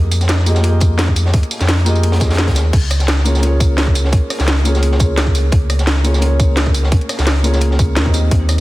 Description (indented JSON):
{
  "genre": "liquid drum and bass",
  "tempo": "172 BPM",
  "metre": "4/4",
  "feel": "swing 54% on 16ths",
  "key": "unclear",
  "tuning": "A4 = 440 Hz",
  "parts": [
    { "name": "felt-muted upright piano", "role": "accompaniment", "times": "0.0-8.6 s", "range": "Bb3 to Eb5", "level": "-21 LUFS", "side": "equal", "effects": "low-pass filter, dub echo" },
    { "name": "sub bass with octave", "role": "bass", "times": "0.0-8.6 s", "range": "C2 to F2", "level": "-14 LUFS", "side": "equal", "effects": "none" },
    { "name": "crunchy breakbeat drum kit", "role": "drums", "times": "0.1-8.6 s", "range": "hi-hat, snare drum", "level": "-27 LUFS", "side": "equal", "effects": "high-pass filter on hats, high-pass filter on snare, high-pass filter on room" },
    { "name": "drum and bass drum kit", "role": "drums", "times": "0.1-8.6 s", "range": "crash cymbal, hi-hat, rim click, snare drum, tambourine", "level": "-20 LUFS", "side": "equal", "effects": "none" },
    { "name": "electronic kick drum", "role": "drums", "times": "0.8-8.4 s", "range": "none", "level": "-14 LUFS", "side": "equal", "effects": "overdrive" }
  ],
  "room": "little or no reverb",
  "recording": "dense, heavily limited modern master",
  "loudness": "-12 LUFS",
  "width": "side -18 dB against mid",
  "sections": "0.0-8.6 A section",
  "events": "none",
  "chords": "0.0 Fm11; 2.7 Db6",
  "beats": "0.29 0.64 0.99 | 1.34 1.69 2.03 2.38 | 2.73 3.08 3.43 3.78 | 4.13 4.48 4.83 5.17 | 5.52 5.87 6.22 6.57 | 6.92 7.27 7.62 7.96 | 8.31"
}